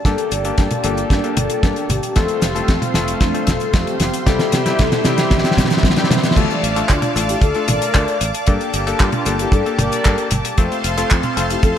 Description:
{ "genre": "italo disco", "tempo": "114 BPM", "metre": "4/4", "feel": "straight", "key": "D minor", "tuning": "A4 = 436 Hz", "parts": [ { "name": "mellow synth brass", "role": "melody", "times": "0.0-11.8 s", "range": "A3 to D5", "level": "-24 LUFS", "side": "left 2 dB", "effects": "chorus, cassette tape, ping-pong delay" }, { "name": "lush unison pad", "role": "sustained chords", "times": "0.0-11.8 s", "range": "Bb3 to D6", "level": "-24 LUFS", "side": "equal", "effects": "chorus" }, { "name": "warm electric grand piano", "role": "stabs", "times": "0.1-11.7 s", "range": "G3 to A4", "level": "-23 LUFS", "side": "left 4 dB", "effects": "low-pass filter" }, { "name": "fingered electric bass", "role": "bass", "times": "0.1-11.7 s", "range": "F1 to C3", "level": "-24 LUFS", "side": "right 1 dB", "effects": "none" }, { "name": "damped 70s drum kit", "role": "drums", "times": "0.1-11.7 s", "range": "cabasa, crash cymbal, handclaps, hi-hat, snare drum, toms", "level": "-19 LUFS", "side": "equal", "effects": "gated reverb" }, { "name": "kick drum", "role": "drums", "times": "0.1-11.7 s", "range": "none", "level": "-16 LUFS", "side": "right 1 dB", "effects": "none" } ], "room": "moderate plate reverb, RT60 2.2 s", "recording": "bright 1980s-style digital production", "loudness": "-15 LUFS", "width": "side -9 dB against mid", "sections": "0.0-6.4 A section; 6.4-11.8 B section", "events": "drum fill 0.0-6.4; filter sweep on analog synth pad 0.0-6.4; filter sweep on analog polysynth 0.0-6.4", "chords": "0.1 Gmadd9; 2.2 F; 4.3 C; 6.4 Dm; 8.5 Gmadd9; 10.6 F" }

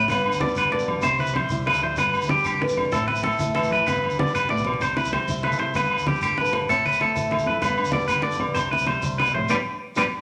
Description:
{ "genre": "highlife guitar band", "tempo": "128 BPM (dotted quarters)", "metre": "12/8", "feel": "straight", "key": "G major", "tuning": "A4 = 441 Hz", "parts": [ { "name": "flamenco guitar", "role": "accompaniment", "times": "0.0-10.0 s", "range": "G2 to B4", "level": "-30 LUFS", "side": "equal", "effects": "none" }, { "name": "clean electric guitar", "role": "arpeggios", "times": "0.0-10.0 s", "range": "G4 to D5", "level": "-26 LUFS", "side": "equal", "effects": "warbly pitch drift" }, { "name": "fingered electric bass", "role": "bass", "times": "0.0-10.0 s", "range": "E1 to C3", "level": "-37 LUFS", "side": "equal", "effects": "none" }, { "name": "agogo bells", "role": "percussion", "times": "0.1-10.0 s", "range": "none", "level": "-32 LUFS", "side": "equal", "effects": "none" }, { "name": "congas", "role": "percussion", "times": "0.1-10.0 s", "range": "none", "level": "-32 LUFS", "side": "equal", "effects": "none" }, { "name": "shekere", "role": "percussion", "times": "0.1-10.0 s", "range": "none", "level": "-39 LUFS", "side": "equal", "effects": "none" } ], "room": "wet large studio reverb, RT60 1.2 s", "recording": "none", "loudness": "-23 LUFS", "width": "mono", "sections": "0.0-10.2 A section", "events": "band accent 9.5-10.2", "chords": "0.1 G; 1.0 C; 2.0 G; 2.9 Am; 3.9 G; 4.8 C; 5.7 G; 6.7 Am; 7.6 G; 8.6 C; 9.5 G" }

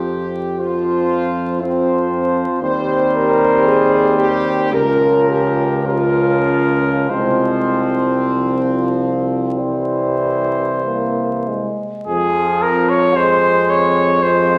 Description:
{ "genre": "classical, hymn-like piece for brass band", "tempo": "47-60 BPM", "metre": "4/4", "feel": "rubato", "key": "F minor", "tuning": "A4 = 440 Hz", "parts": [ { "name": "warm cornet", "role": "melody", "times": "0.0-14.6 s", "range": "Ab4 to Db5", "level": "-21 LUFS", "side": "equal", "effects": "none" }, { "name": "clear French horn section", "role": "second line", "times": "0.0-14.6 s", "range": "C4 to C5", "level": "-22 LUFS", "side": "equal", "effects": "none" }, { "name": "brilliant trombone", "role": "accompaniment", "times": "0.0-14.6 s", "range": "E3 to Ab3", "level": "-24 LUFS", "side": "equal", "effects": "none" }, { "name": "warm euphonium", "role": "accompaniment", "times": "0.0-14.6 s", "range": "F3 to F4", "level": "-26 LUFS", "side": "equal", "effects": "none" }, { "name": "warm tuba", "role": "bass", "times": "0.0-14.6 s", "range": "C2 to F2", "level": "-24 LUFS", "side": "equal", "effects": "none" } ], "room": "wet recital hall reverb, RT60 1.4 s", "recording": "vinyl crackle", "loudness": "-17 LUFS", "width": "mono", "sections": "0.0-12.1 A section; 12.1-14.6 B section", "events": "none", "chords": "0.0 F5; 2.6 Cm/Eb; 4.7 Bbm/Db; 7.1 Fm/C; 9.6 C; 12.1 Fm" }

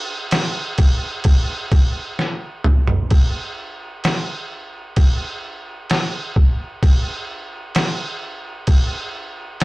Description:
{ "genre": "metal", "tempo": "65 BPM", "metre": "4/4", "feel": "straight", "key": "none", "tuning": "none", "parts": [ { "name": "trip hop sampler-style drum kit", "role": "drums", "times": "0.3-9.6 s", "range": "crash cymbal, kick drum, snare drum, toms", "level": "-18 LUFS", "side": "equal", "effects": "none" } ], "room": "light reverb", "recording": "rough rehearsal-room recording, tube saturation", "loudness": "-17 LUFS", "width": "side -21 dB against mid", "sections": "0.0-3.1 A section; 3.1-9.6 B section", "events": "drum fill 2.2-3.1", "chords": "none" }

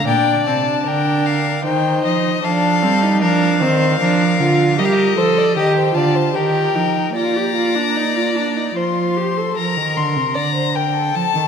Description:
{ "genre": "classical, baroque-style fugue for string quartet", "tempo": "76 BPM", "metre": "3/4", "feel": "straight", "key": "Bb major", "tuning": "A4 = 440 Hz", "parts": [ { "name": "warm violin", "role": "melody", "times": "0.0-11.5 s", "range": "Eb5 to C6", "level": "-20 LUFS", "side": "left 8 dB", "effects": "none" }, { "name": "rich violin", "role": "second line", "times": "0.0-11.5 s", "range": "A4 to Eb5", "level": "-23 LUFS", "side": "left 4 dB", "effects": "none" }, { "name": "rich viola", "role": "accompaniment", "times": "0.0-9.6 s", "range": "C4 to A4", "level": "-19 LUFS", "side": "right 1 dB", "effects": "none" }, { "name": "rich cello", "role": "bass", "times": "0.0-11.5 s", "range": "Bb2 to Bb3", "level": "-20 LUFS", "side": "right 5 dB", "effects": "none" } ], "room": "wet concert hall reverb, RT60 2.4 s", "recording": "none", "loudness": "-15 LUFS", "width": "side -7 dB against mid", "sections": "0.1-9.6 A section; 9.6-11.5 B section", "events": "none", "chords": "0.1 Gm/Bb; 1.6 Cm/Eb; 2.4 F; 4.0 Bb/F; 4.8 Eb; 7.2 Fsus4/Bb; 8.8 F; 9.6 Bb" }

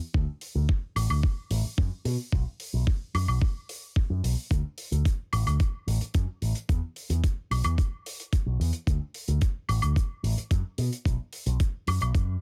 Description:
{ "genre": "nu-disco, nu disco", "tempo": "110 BPM", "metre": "4/4", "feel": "straight", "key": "D major", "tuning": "A4 = 439 Hz", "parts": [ { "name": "picked electric bass with an envelope filter", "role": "bass", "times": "0.1-12.4 s", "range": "A1 to B2", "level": "-29 LUFS", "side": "equal", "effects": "tube saturation" }, { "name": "electronic kick drum", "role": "drums", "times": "0.1-12.3 s", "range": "none", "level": "-27 LUFS", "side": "equal", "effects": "studio reverb" }, { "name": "hi-hat and woodblock", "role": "drums", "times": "0.4-12.3 s", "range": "none", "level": "-38 LUFS", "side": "equal", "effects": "studio reverb" } ], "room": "little or no reverb", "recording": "none", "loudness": "-28 LUFS", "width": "mono", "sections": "0.0-12.4 A section", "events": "none", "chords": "none" }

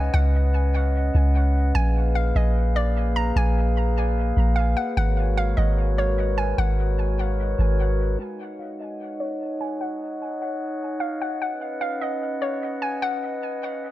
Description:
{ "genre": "hip hop, atmospheric cloud-rap", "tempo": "149 BPM", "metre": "4/4", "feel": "half-time", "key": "Eb minor", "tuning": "A4 = 440 Hz", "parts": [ { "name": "hollow square pluck", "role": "melody", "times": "0.0-13.9 s", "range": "Db5 to Bb5", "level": "-30 LUFS", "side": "equal", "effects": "chorus, low-pass filter, dub echo" }, { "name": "glass harmonica", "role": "sustained chords", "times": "0.0-13.9 s", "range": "Ab3 to Gb5", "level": "-28 LUFS", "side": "left 1 dB", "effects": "low-pass filter" }, { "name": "soft 808-style bass", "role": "bass", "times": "0.0-8.2 s", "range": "Ab1 to Db2", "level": "-20 LUFS", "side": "equal", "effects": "none" } ], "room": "light reverb", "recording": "echo-heavy mix", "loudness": "-21 LUFS", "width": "side -15 dB against mid", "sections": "0.0-8.2 A section; 8.2-13.9 B section", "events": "filter sweep 8.2-13.9", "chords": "0.0 Db9sus4; 1.7 Bb7b9; 5.0 Abm11; 8.2 Ebm7; 11.4 Db9sus4" }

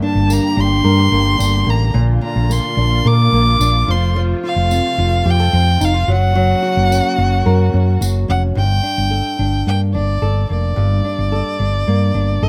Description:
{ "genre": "acoustic pop", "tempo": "109 BPM", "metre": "4/4", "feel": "straight", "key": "unclear", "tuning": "A4 = 440 Hz", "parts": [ { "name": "rich violin", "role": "melody", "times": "0.0-12.5 s", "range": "D5 to D6", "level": "-22 LUFS", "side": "equal", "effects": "none" }, { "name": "flamenco guitar", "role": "accompaniment", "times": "0.0-12.5 s", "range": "G2 to Bb4", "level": "-23 LUFS", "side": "equal", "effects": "none" }, { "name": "muted studio string section", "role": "sustained chords", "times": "0.0-8.5 s", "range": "C3 to G4", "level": "-29 LUFS", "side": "equal", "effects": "none" }, { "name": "hollow-body short-scale fingered electric bass", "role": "bass", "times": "0.2-12.5 s", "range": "F1 to Bb2", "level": "-17 LUFS", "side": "equal", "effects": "none" }, { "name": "tambourine", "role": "percussion", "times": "0.3-8.1 s", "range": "none", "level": "-32 LUFS", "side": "equal", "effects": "none" } ], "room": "little or no reverb", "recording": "rough home demo mix", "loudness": "-15 LUFS", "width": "mono", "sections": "0.0-8.6 A section; 8.6-12.5 B section", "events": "none", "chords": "0.0 Gm; 2.0 Bb; 3.9 F; 6.1 Gb; 8.6 Gmadd9" }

